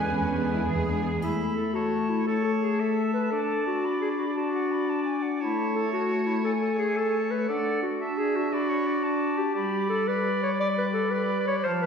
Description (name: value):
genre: cinematic, heroic adventure film score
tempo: 115 BPM (dotted quarters)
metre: 12/8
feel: straight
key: A major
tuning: A4 = 440 Hz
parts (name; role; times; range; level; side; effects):
- clear symphonic violin section; melody; 0.0-0.6 s; G#5; -41 LUFS; left 2 dB; none
- bright oboe; second line; 0.0-11.9 s; B4 to F5; -34 LUFS; right 2 dB; none
- rich symphonic violin section; second line; 0.0-1.2 s; D4 to G#4; -38 LUFS; left 1 dB; none
- silver concert flute; second line; 0.0-11.9 s; F#5 to B5; -35 LUFS; left 1 dB; none
- warm studio viola section; accompaniment; 0.0-1.2 s; G#3 to B3; -31 LUFS; right 1 dB; none
- mellow French horn section; sustained chords; 0.0-11.9 s; D3 to D4; -29 LUFS; left 3 dB; none
- clear trumpet; stabs; 0.0-1.0 s; B4; -37 LUFS; right 3 dB; none
- clear symphonic double bass section; bass; 0.0-1.2 s; E2; -32 LUFS; right 1 dB; none
- rich symphonic cello section; bass; 0.0-1.2 s; B3 to G#4; -33 LUFS; right 4 dB; none
- clear clarinet; second line; 1.2-11.9 s; E4 to D5; -28 LUFS; equal; none
- triangle; percussion; 1.2-1.9 s; none; -58 LUFS; equal; none
room: wet scoring stage reverb, RT60 1.4 s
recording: heard from further back in the room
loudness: -24 LUFS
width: side -6 dB against mid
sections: 0.0-1.2 A section; 1.2-11.9 B section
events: none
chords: 0.0 E7; 1.2 A; 3.3 D; 5.4 A; 7.5 D; 9.6 G